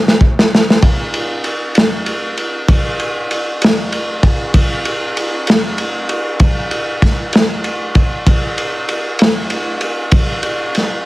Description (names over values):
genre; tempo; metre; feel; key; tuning
blues; 65 BPM (dotted quarters); 12/8; straight; none; none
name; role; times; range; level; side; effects
crunchy breakbeat drum kit; drums; 0.1-10.9 s; kick drum, ride cymbal, snare drum; -13 LUFS; equal; none
room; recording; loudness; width
moderate club reverb, RT60 0.5 s; heavily compressed radio sound; -13 LUFS; side -19 dB against mid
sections
0.0-11.1 A section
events
drum fill 0.0-0.8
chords
none